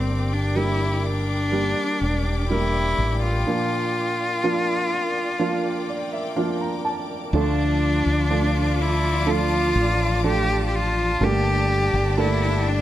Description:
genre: pop ballad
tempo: 62 BPM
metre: 4/4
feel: straight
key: D minor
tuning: A4 = 440 Hz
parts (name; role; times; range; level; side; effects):
- clear cello; melody; 0.0-12.8 s; C4 to G4; -24 LUFS; left 1 dB; none
- dark upright piano; accompaniment; 0.0-12.8 s; G2 to Bb5; -26 LUFS; right 3 dB; none
- clear studio string section; sustained chords; 0.0-12.8 s; Bb4 to D6; -32 LUFS; left 3 dB; none
- mellow fretless electric bass; bass; 0.0-12.8 s; E1 to D2; -23 LUFS; equal; none
- rich symphonic cello section; second line; 7.3-12.8 s; D3 to F4; -30 LUFS; left 1 dB; none
room: light reverb, studio reverb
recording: none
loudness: -20 LUFS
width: side -13 dB against mid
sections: 0.0-7.3 A section; 7.3-12.8 B section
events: upright piano fill 5.4-7.3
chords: 0.0 Gm; 3.5 Bb; 7.3 Dm; 11.2 Gmadd9

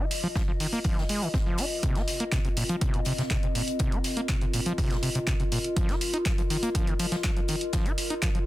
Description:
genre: acid house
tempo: 122 BPM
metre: 4/4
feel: straight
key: C minor pentatonic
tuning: A4 = 438 Hz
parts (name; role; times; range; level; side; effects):
- overdriven acid bass; riff; 0.0-8.4 s; Bb2 to F4; -31 LUFS; equal; tube saturation, sidechain pumping, tape echo
- warbly tape-like pad; texture; 0.0-8.5 s; C4 to Eb5; -33 LUFS; left 2 dB; chorus, built-in reverb, sidechain pumping
- open jazz drum kit; drums; 0.1-8.3 s; hi-hat, snare drum; -42 LUFS; left 4 dB; none
- punchy analog drum machine; drums; 0.1-8.4 s; handclaps, hi-hat; -32 LUFS; right 1 dB; none
- electronic kick drum; drums; 0.4-8.3 s; none; -28 LUFS; equal; none
room: light reverb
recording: dense, heavily limited modern master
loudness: -25 LUFS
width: side -16 dB against mid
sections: 0.0-8.5 A section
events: none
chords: 0.0 F7(no3); 1.8 Cm7; 5.8 F5

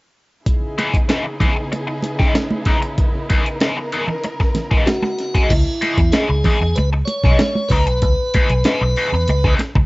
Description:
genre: funk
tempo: 95 BPM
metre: 4/4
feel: straight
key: C# dorian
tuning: A4 = 444 Hz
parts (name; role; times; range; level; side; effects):
- warm studio string section; sustained chords; 0.5-5.5 s; C#3 to A#4; -27 LUFS; equal; cassette tape
- breakbeat sampler-style drum kit; drums; 0.5-9.9 s; crash cymbal, hi-hat, kick drum, snare drum; -18 LUFS; equal; cassette tape
- biting overdriven guitar; accompaniment; 0.8-9.8 s; E3 to A#4; -22 LUFS; left 2 dB; wah, cassette tape
- congas; percussion; 0.8-9.7 s; none; -24 LUFS; right 2 dB; none
- tonewheel organ; melody; 4.9-9.5 s; E4 to C#5; -21 LUFS; equal; slow rotary speaker, cassette tape
- vintage muted fingered electric bass; bass; 5.5-9.9 s; B1 to E2; -18 LUFS; equal; none
room: little or no reverb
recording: home recording on cassette, nothing above 7.7 kHz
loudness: -15 LUFS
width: side -23 dB against mid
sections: 0.5-5.5 A section; 5.5-9.9 B section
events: none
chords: 0.5 C#m9

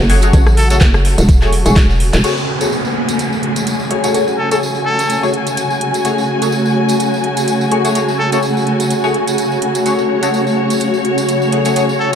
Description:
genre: bass house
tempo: 126 BPM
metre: 4/4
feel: swing 55% on 16ths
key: F# minor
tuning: A4 = 442 Hz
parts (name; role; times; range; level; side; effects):
- dark symphonic string section; sustained chords; 0.0-12.2 s; C#3 to G#5; -17 LUFS; equal; sidechain pumping
- hollow knocking FM bass; bass; 0.0-2.2 s; E1 to A1; -12 LUFS; equal; overdrive, sidechain pumping
- band-passed chord stab; stabs; 0.1-11.8 s; A3 to C#5; -20 LUFS; left 3 dB; phaser, wide subtle chorus, sidechain pumping, ping-pong delay
- breakbeat sampler-style drum kit; drums; 0.1-2.2 s; hi-hat, snare drum; -32 LUFS; right 1 dB; none
- house drum kit; drums; 0.1-11.9 s; crash cymbal, handclaps, hi-hat, rim click; -23 LUFS; right 1 dB; studio reverb
- tambourine; percussion; 0.2-12.0 s; none; -27 LUFS; right 4 dB; none
- electronic kick drum; drums; 0.3-1.9 s; none; -10 LUFS; equal; overdrive, studio reverb
- trumpet with straight mute; melody; 0.6-0.8, 4.4-5.2, 8.2-8.4, 12.0-12.1 s; A4; -21 LUFS; equal; ping-pong delay
- downlifter; sound effects; 2.2-6.0 s; none; -22 LUFS; equal; none
- granular cloud pad; texture; 3.4-12.2 s; F#4 to G#5; -20 LUFS; left 1 dB; built-in reverb, sidechain pumping
room: moderate lush hall reverb, RT60 2.0 s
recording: dark, warm production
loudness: -12 LUFS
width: side -8 dB against mid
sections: 0.0-2.2 A section; 2.2-12.2 B section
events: drum fill 1.8-2.2; band accent 2.1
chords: 0.0 F#madd9

